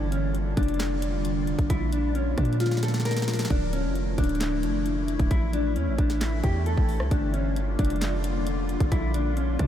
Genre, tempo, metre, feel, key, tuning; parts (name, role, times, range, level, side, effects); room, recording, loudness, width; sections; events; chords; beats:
hip hop, trap; 133 BPM; 4/4; half-time; A4 = 441 Hz
mellow electric guitar; melody; 0.0-9.7 s; C#4 to Bb4; -29 LUFS; left 2 dB; lush chorus, analog delay
glassy FM pad; sustained chords; 0.0-9.7 s; D3 to F4; -32 LUFS; equal; ensemble chorus, built-in reverb
hard-hitting 808-style bass; bass; 0.0-9.7 s; D1 to Bb2; -27 LUFS; equal
trap drum kit; drums; 0.1-9.7 s; handclaps, hi-hat, kick drum, rim click, snare drum; -28 LUFS; equal
light reverb; -23 LUFS; side -10 dB against mid
0.0-9.7 A section
drum fill 2.6-3.5
0.0 Gm7; 1.7 Bb; 3.5 Dmadd9; 5.3 Asus4; 7.1 Gm7; 8.9 Bb
0.35 0.80 1.25 | 1.70 2.15 2.60 3.05 | 3.50 3.96 4.41 4.86 | 5.31 5.76 6.21 6.66 | 7.11 7.56 8.02 8.47 | 8.92 9.37